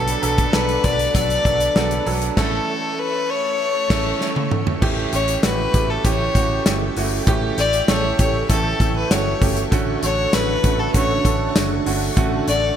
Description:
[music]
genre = 1980s-style pop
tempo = 98 BPM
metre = 4/4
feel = straight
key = unclear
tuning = A4 = 440 Hz
[part]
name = warm fiddle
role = melody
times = 0.0-12.8 s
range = A4 to D5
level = -22 LUFS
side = left 3 dB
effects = ping-pong delay
[part]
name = clear grand piano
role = accompaniment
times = 0.0-12.8 s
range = D3 to B4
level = -24 LUFS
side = right 5 dB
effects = none
[part]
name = string machine, full ensemble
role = sustained chords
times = 0.0-12.8 s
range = D4 to C#6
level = -29 LUFS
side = equal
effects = ensemble chorus
[part]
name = vintage muted fingered electric bass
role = bass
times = 0.0-12.7 s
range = F#1 to B1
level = -25 LUFS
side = equal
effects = none
[part]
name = modern studio drum kit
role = drums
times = 0.1-12.6 s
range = crash cymbal, hi-hat, kick drum, snare drum, tambourine, toms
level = -21 LUFS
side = equal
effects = none
[sound]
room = moderate plate reverb, RT60 2.5 s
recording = bright 1980s-style digital production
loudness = -17 LUFS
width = side -9 dB against mid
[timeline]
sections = 0.0-4.8 A section; 4.8-12.8 B section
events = band accent 2.4-4.8; drum fill 4.2-4.8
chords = 0.0 Bm7; 2.4 A; 4.8 A7; 9.7 Dmaj7

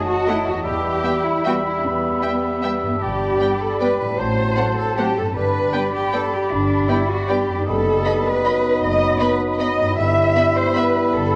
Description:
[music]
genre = classical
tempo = 154 BPM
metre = 3/4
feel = uneven beats, rubato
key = E minor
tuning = A4 = 439 Hz
[part]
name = large flute ensemble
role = second line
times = 0.0-11.4 s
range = A5 to B5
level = -30 LUFS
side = equal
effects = none
[part]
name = warm oboe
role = second line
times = 0.0-11.4 s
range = C5 to E5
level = -30 LUFS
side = equal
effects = none
[part]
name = mellow bassoon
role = accompaniment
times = 0.0-11.4 s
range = F#3 to G3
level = -29 LUFS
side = equal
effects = none
[part]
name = concert harp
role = arpeggios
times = 0.0-11.4 s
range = E2 to B4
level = -33 LUFS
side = equal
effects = none
[part]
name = warm studio cello section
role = bass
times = 0.0-11.4 s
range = B3 to E5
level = -24 LUFS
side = equal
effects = none
[part]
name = warm studio violin section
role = melody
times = 0.3-10.8 s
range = F#5 to B5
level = -35 LUFS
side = equal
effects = none
[part]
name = warm studio violin section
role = second line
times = 0.3-10.8 s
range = C5 to E5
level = -34 LUFS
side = equal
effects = none
[part]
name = warm symphonic viola section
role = accompaniment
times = 0.3-10.8 s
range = A3 to B3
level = -33 LUFS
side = equal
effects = none
[part]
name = dark French horn section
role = sustained chords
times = 0.3-11.4 s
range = F#3 to E4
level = -30 LUFS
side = equal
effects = none
[part]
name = rich studio double bass section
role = bass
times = 0.7-11.4 s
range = F#1 to E2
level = -29 LUFS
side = equal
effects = none
[sound]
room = moderate concert hall reverb, RT60 2.5 s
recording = worn, warbling old tape, cassette tape, warbly pitch drift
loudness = -19 LUFS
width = mono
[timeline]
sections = 0.0-11.4 A section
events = none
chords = 0.0 D#dim/F#; 0.6 Em; 3.0 G; 4.2 F#dim/A; 5.4 G; 7.7 B7/F#; 10.0 Em/G

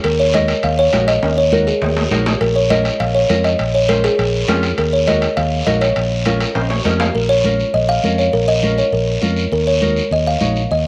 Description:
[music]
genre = latin, cumbia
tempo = 202 BPM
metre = 4/4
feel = straight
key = Bb minor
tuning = A4 = 440 Hz
[part]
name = kalimba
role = melody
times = 0.0-10.8 s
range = Ab4 to F5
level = -19 LUFS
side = equal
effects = none
[part]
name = fingered electric bass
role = bass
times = 0.0-10.9 s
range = Bb1 to F2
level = -22 LUFS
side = equal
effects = none
[part]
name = guiro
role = percussion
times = 0.0-10.9 s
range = none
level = -29 LUFS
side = equal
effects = none
[part]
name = timbales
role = percussion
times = 0.0-7.1 s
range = none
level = -27 LUFS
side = equal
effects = none
[part]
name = congas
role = percussion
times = 0.1-10.9 s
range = none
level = -26 LUFS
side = equal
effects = none
[part]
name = nylon-string guitar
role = accompaniment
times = 0.3-10.6 s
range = Db4 to F5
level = -26 LUFS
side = equal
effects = none
[sound]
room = moderate echo chamber reverb, RT60 1.5 s, small room ambience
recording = none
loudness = -16 LUFS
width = mono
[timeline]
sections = 0.0-7.1 A section; 7.1-10.9 A section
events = drum fill 1.2-2.4, 6.6-7.1; nylon-string guitar fill 4.3-4.8, 6.3-7.1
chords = 0.0 Ebm; 2.4 Bbm7; 4.8 Ebm; 6.0 Bbm; 9.5 Ebm

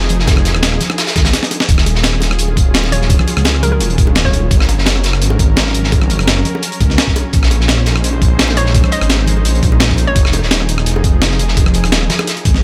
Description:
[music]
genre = liquid drum and bass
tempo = 170 BPM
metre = 4/4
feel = straight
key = Eb dorian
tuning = A4 = 440 Hz
[part]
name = lush unison pad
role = sustained chords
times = 0.0-12.6 s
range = F3 to C5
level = -26 LUFS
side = equal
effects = chorus, sidechain pumping
[part]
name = swelling detuned saw bass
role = bass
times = 0.0-12.6 s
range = Eb1 to Db2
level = -17 LUFS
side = equal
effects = none
[part]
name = crunchy breakbeat drum kit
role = drums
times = 0.0-12.5 s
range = hi-hat, snare drum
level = -23 LUFS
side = equal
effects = high-pass filter on hats, high-pass filter on snare, high-pass filter on room
[part]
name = breakbeat sampler-style drum kit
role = drums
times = 0.1-12.6 s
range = hi-hat, rim click, snare drum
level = -20 LUFS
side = equal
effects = none
[part]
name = congas and bongos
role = percussion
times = 0.1-12.6 s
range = none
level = -26 LUFS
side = equal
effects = none
[part]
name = electronic kick drum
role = drums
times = 0.3-12.5 s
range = none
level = -15 LUFS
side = equal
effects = none
[part]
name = hollow square pluck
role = melody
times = 2.9-4.5, 8.6-10.2 s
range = Bb4 to Eb5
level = -26 LUFS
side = equal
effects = chorus, digital delay
[sound]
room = studio reverb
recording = none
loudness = -13 LUFS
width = mono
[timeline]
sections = 0.0-12.6 A section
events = drum fill 1.3-1.7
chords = 0.0 Fm7; 1.7 Ebm11; 4.5 Ab9sus4; 7.3 Bbm11; 10.2 Fm7

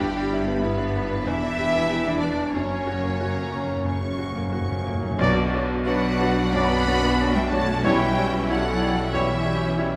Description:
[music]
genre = classical, romantic movement for piano and orchestra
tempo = 92 BPM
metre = 4/4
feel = rubato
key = B minor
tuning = A4 = 440 Hz
[part]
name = bright grand piano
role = melody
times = 0.0-10.0 s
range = B1 to G4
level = -29 LUFS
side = equal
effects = none
[part]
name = clear symphonic violin section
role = melody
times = 0.0-10.0 s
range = E5 to D6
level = -34 LUFS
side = equal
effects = none
[part]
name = dark symphonic violin section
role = second line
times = 0.0-10.0 s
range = G4 to F#5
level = -33 LUFS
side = equal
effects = none
[part]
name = rich symphonic viola section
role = accompaniment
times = 0.0-10.0 s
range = G3 to F#4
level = -33 LUFS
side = equal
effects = none
[part]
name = mellow French horn section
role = sustained chords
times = 0.0-9.4 s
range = A#3 to F#4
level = -37 LUFS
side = equal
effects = none
[part]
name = rich symphonic double bass section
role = bass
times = 0.0-10.0 s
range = E1 to B1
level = -33 LUFS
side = equal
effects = none
[part]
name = warm symphonic cello section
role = bass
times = 0.0-10.0 s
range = E2 to B3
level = -32 LUFS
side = equal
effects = none
[part]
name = timpani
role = percussion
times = 2.6-8.8 s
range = F#2 to B2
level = -33 LUFS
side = equal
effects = none
[part]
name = bright oboe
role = second line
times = 5.2-9.9 s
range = C#5 to D5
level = -37 LUFS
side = equal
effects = none
[part]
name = warm clarinet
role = second line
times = 5.2-9.9 s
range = E4 to F#4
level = -35 LUFS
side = equal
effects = none
[part]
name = warm bassoon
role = accompaniment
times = 5.2-9.9 s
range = F#3 to G3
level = -35 LUFS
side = equal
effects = none
[part]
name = mellow trombone section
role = sustained chords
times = 5.2-9.4 s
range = B2 to G3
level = -38 LUFS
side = equal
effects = none
[part]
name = clear trumpet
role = stabs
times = 5.2-9.4 s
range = C#5 to D5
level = -32 LUFS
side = equal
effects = none
[part]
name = mellow flute section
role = second line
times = 5.9-10.0 s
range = G4 to D5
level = -34 LUFS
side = equal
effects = none
[sound]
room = moderate scoring stage reverb, RT60 1.9 s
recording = none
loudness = -23 LUFS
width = mono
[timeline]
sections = 0.0-5.2 A section; 5.2-10.0 B section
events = timpani fill 2.5-5.2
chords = 0.0 G6; 1.3 Em7; 2.5 F#; 5.2 Bm; 7.8 C#m7b5/B

